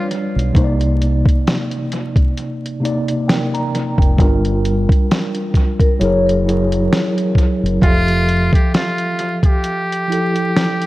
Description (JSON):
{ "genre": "lo-fi hip hop", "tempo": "66 BPM", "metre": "4/4", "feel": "swing 56% on 16ths", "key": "unclear", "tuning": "A4 = 440 Hz", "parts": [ { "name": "trumpet with metal mute", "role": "melody", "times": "0.0-0.1, 7.8-10.9 s", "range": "F4 to G4", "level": "-20 LUFS", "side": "equal", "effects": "low-pass filter, analog delay" }, { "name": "mellow tine electric piano", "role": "accompaniment", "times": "0.0-10.9 s", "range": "C3 to Bb5", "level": "-19 LUFS", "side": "equal", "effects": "medium stereo tremolo, low-pass filter" }, { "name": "lo-fi sampler-style drum kit", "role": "drums", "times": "0.1-10.9 s", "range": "hi-hat, kick drum, snare drum", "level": "-16 LUFS", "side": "equal", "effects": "analog delay" }, { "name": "deep dub fingered electric bass", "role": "bass", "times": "0.4-8.5 s", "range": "F1 to C2", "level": "-18 LUFS", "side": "equal", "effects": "none" }, { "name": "vibraphone with medium mallets", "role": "second line", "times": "5.8-7.6 s", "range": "Bb4 to C#5", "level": "-21 LUFS", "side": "left 3 dB", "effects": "low-pass filter, analog delay" } ], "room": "moderate echo chamber reverb, RT60 2.3 s", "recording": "echo-heavy mix, vinyl crackle", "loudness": "-14 LUFS", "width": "side -18 dB against mid", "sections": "0.0-10.9 A section", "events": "none", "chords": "0.0 G7; 0.5 Cm9; 4.2 Gm7; 6.0 F#9; 7.8 Fmaj9" }